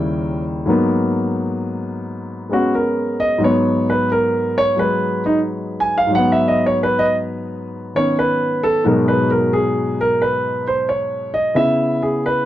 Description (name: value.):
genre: solo jazz.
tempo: 88 BPM.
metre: 4/4.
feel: swing 69% on 8ths.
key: G# minor.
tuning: A4 = 440 Hz.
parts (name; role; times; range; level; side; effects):
warm concert grand piano; solo; 0.0-12.5 s; D#2 to G#5; -16 LUFS; equal; none.
room: small room reverb.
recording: dry, close 1970s-style studio recording.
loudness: -16 LUFS.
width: side -13 dB against mid.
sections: 0.7-12.5 A section.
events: grand piano solo 0.7-12.5.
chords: 0.0 D#7b9; 0.7 G#m9; 11.6 C#m7.